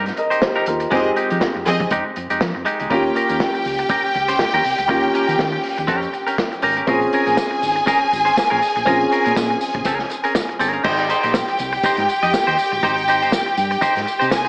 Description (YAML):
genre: disco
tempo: 121 BPM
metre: 4/4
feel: swing 56% on 16ths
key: Ab major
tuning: A4 = 440 Hz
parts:
  - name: clean electric guitar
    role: accompaniment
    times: 0.0-14.5 s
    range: Ab3 to Eb5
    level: -21 LUFS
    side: equal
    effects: spring reverb
  - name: warm grand piano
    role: accompaniment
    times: 0.0-10.9 s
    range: Ab3 to Eb5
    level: -23 LUFS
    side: equal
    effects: none
  - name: hollow-body short-scale fingered electric bass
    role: bass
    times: 0.0-14.5 s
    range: G1 to F3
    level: -28 LUFS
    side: equal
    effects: none
  - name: vintage drum kit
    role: drums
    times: 0.1-14.5 s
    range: crash cymbal, hi-hat, kick drum, snare drum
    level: -24 LUFS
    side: equal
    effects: none
  - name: clear studio string section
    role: second line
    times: 0.9-14.5 s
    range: C4 to Ab5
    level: -19 LUFS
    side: equal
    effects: none
  - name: tambourine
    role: percussion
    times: 7.4-14.4 s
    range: none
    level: -34 LUFS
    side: equal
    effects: none
room: light reverb, small room ambience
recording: small speaker sound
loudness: -16 LUFS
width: side -35 dB against mid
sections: 0.0-2.9 A section; 2.9-10.8 B section; 10.8-14.5 C section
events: none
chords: 0.0 Cm7; 0.9 Fm9; 2.9 Eb7; 6.9 Bbm7; 10.8 Abmaj7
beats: 0.43 | 0.92 1.42 1.92 2.41 | 2.91 3.41 3.90 4.40 | 4.90 5.39 5.89 6.39 | 6.88 7.38 7.88 8.37 | 8.87 9.36 9.86 10.36 | 10.85 11.35 11.84 12.34 | 12.83 13.33 13.82 14.32